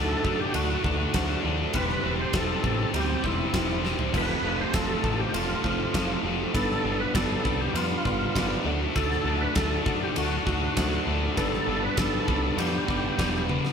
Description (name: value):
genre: classic rock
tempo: 100 BPM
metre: 4/4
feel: straight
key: G mixolydian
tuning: A4 = 440 Hz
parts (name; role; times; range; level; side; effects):
- overdriven tonewheel organ; melody; 0.0-13.5 s; E4 to C5; -31 LUFS; equal; chorus vibrato, slow rotary speaker
- clear upright piano; accompaniment; 0.0-13.7 s; G3 to D5; -38 LUFS; left 2 dB; none
- distorted electric guitar; riff; 0.0-13.7 s; F2 to D4; -30 LUFS; left 8 dB; overdrive
- overdriven electric guitar; riff; 0.0-13.7 s; E2 to C5; -31 LUFS; right 7 dB; none
- growling picked electric bass; bass; 0.0-13.6 s; E1 to F#2; -31 LUFS; equal; overdrive
- huge arena drum kit; drums; 0.2-13.7 s; crash cymbal, kick drum, ride cymbal, snare drum, toms; -29 LUFS; equal; none
room: moderate studio reverb, RT60 0.8 s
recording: band playing live in one room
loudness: -24 LUFS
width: side -7 dB against mid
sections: 0.0-13.7 A section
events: drum fill 3.8-4.1, 13.5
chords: 0.0 D; 1.7 C/E; 4.1 F; 6.5 G; 8.7 D; 11.4 G